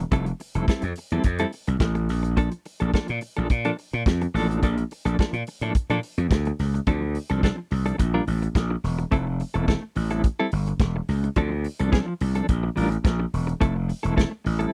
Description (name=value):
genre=disco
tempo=107 BPM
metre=4/4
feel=straight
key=unclear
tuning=A4 = 440 Hz
part: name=semi-hollow electric guitar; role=accompaniment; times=0.0-14.7 s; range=F3 to Bb4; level=-29 LUFS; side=equal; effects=tremolo
part: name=gritty slap bass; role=bass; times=0.0-14.7 s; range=E1 to Bb2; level=-26 LUFS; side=equal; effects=overdrive
part: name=warm soul drum kit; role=drums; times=0.0-14.7 s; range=hi-hat, kick drum, snare drum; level=-25 LUFS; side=equal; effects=none
room=little or no reverb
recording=dry, close 1970s-style studio recording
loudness=-25 LUFS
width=mono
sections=0.0-6.9 A section; 6.9-14.7 B section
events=none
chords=0.0 Fmaj9; 2.1 Bbmaj7; 6.9 Dm7; 8.0 Bb6; 9.1 Fmaj7; 10.0 Am7; 11.4 Dm7; 12.5 Bb6; 13.6 Fmaj7